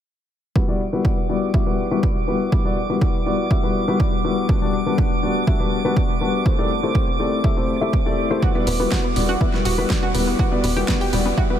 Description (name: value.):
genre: progressive house.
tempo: 122 BPM.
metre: 4/4.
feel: straight.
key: unclear.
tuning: A4 = 440 Hz.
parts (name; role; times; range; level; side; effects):
felt-muted upright piano; stabs; 0.6-11.6 s; G3 to E5; -21 LUFS; left 3 dB; sidechain pumping, low-pass filter, analog delay.
electronic kick drum; drums; 0.6-11.5 s; none; -20 LUFS; right 1 dB; overdrive, small room ambience.
drifting glass-harmonics texture; texture; 1.2-11.6 s; D6; -30 LUFS; right 5 dB; chorus, built-in reverb, sidechain pumping.
analog pluck; arpeggios; 8.4-11.6 s; B3 to G4; -24 LUFS; right 1 dB; chorus, sidechain pumping, analog delay.
tight sequencer bass; bass; 8.7-11.3 s; E1; -24 LUFS; right 1 dB; sidechain pumping.
deep house drum kit; drums; 8.7-11.2 s; hi-hat, snare drum; -27 LUFS; equal; overdrive, small room ambience.
congas; percussion; 9.3-11.4 s; none; -36 LUFS; left 4 dB; none.
room: moderate huge ambient reverb, RT60 6.5 s.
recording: dreamy mix soaked in reverb.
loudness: -18 LUFS.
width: side -10 dB against mid.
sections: 0.6-11.6 A section.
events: none.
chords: 0.6 Gmaj7; 6.5 Am7; 8.4 Emadd9.